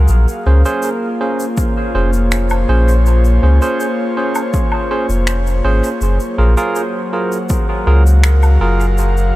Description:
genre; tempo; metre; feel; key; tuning
ambient dub; 81 BPM; 4/4; straight; Bb minor; A4 = 440 Hz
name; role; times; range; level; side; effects
airy breathy pad; sustained chords; 0.0-9.4 s; Gb3 to F5; -20 LUFS; left 1 dB; chorus
warm sub bass; bass; 0.0-9.3 s; F1 to Db2; -11 LUFS; equal; none
shaker, finger snaps and woodblock; drums; 0.1-9.3 s; none; -25 LUFS; left 1 dB; dub echo
barky tine electric piano; stabs; 0.5-8.9 s; Db4 to C5; -20 LUFS; right 3 dB; dub echo
electronic kick drum; drums; 1.6-7.7 s; none; -17 LUFS; equal; overdrive
room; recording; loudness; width
small room ambience; none; -12 LUFS; side -17 dB against mid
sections
0.0-9.4 A section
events
none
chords
0.1 Bbm9; 6.0 Gbmaj9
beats
| 0.09 0.83 1.58 2.32 | 3.06 3.80 4.54 5.28 | 6.02 6.76 7.50 8.24 | 8.98

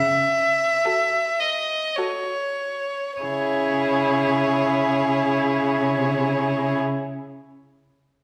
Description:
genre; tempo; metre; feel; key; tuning
classical, slow romantic movement for string quartet; 46-61 BPM; 3/4; rubato; C# minor; A4 = 440 Hz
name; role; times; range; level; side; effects
rich violin; melody; 0.0-6.8 s; C#5 to E5+23c; -25 LUFS; equal; none
rich cello; bass; 0.0-6.8 s; C#3; -27 LUFS; equal; none
rich violin; second line; 0.8-6.8 s; G#4 to A4; -29 LUFS; equal; none
warm viola; accompaniment; 0.9-6.8 s; E4 to F#4; -29 LUFS; equal; none
room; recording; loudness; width
wet recital hall reverb, RT60 1.5 s; recorded in a church or concert hall; -22 LUFS; mono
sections
0.0-3.2 A section; 3.2-6.8 B section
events
slowing down 0.0-3.2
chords
0.0 F#m/C#; 3.2 C#m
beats
0.85 1.97 | 3.21 4.43 5.62

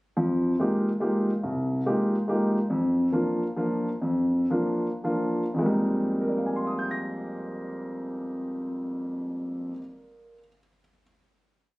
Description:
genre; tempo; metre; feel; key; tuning
jazz; 99-142 BPM; 3/4; swing 65% on 8ths; F dorian; A4 = 440 Hz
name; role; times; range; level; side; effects
warm grand piano; solo; 0.2-11.0 s; C2 to Bb6; -25 LUFS; equal; none
room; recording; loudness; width
moderate studio reverb, RT60 0.6 s; recorded on a phone in the room, club reverb, compression, faint mains hum; -25 LUFS; side -21 dB against mid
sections
0.2-5.6 A section; 5.6-9.2 final chord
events
slowing down 2.7-5.6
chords
0.2 Fm11; 2.7 Bb/F; 5.6 Fm11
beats
| 0.16 0.58 1.00 | 1.43 1.85 2.28 | 2.70 3.13 3.57 | 4.02 4.51 5.03 | 5.61 6.21 6.82 | 7.43 8.03 8.64

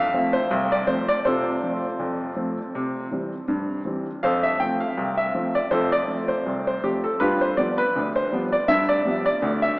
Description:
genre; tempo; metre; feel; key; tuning
ragtime piano; 81 BPM; 2/4; swing 55% on 16ths; F major; A4 = 440 Hz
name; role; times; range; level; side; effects
clear upright piano; solo; 0.0-9.8 s; C2 to G5; -21 LUFS; equal; none
room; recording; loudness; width
wet cathedral reverb, RT60 5.3 s; in a vast, echoing space, AM radio sound; -21 LUFS; side -25 dB against mid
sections
0.0-9.8 A section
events
none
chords
0.0 F; 1.2 F/C; 2.7 C; 4.2 F; 7.2 G7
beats
0.51 | 1.25 1.99 | 2.73 3.48 | 4.22 4.96 | 5.70 6.44 | 7.18 7.92 | 8.66 9.40

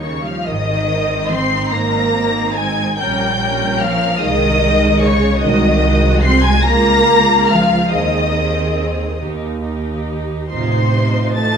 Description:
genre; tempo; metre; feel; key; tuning
classical, slow romantic movement for string orchestra; 47 BPM (dotted quarters); 6/8; rubato; Ab major; A4 = 440 Hz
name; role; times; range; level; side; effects
rich studio violin section; melody; 0.0-11.6 s; C6 to C7; -22 LUFS; left 3 dB; none
warm symphonic violin section; second line; 0.0-11.6 s; C5 to C6; -18 LUFS; left 4 dB; none
rich studio viola section; accompaniment; 0.0-11.6 s; Eb3 to Bb4; -21 LUFS; equal; none
clear symphonic cello section; bass; 0.0-11.6 s; C3 to C4; -20 LUFS; right 4 dB; none
rich studio double bass section; bass; 0.0-11.6 s; Ab1 to Eb2; -19 LUFS; right 2 dB; none
room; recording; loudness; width
wet recital hall reverb, RT60 1.6 s; minimal, uncompressed stereo recording; -13 LUFS; side -7 dB against mid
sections
0.5-11.6 A section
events
none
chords
0.5 Ab; 3.0 Gdim/Bb; 4.2 Ab/C; 5.4 Ab7/C; 6.7 Db6; 7.9 Ab/Eb; 9.2 Eb; 10.5 F7/A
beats
| 0.46 1.71 | 2.98 4.22 | 5.42 6.65 | 7.93 9.22 | 10.52

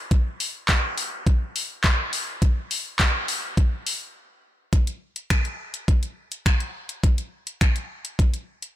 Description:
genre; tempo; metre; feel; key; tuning
pop; 104 BPM; 4/4; straight; none; none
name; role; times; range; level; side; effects
smooth R&B drum kit; drums; 0.1-8.8 s; finger snaps, handclaps, hi-hat, kick drum; -21 LUFS; equal; none
room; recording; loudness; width
little or no reverb; blown-out, overdriven recording, overdrive; -22 LUFS; side -13 dB against mid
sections
0.0-4.7 A section; 4.7-8.8 B section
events
break 4.2-4.7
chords
none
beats
| 0.11 0.69 1.27 1.84 | 2.42 3.00 3.57 4.15 | 4.73 5.30 5.88 6.46 | 7.04 7.61 8.19

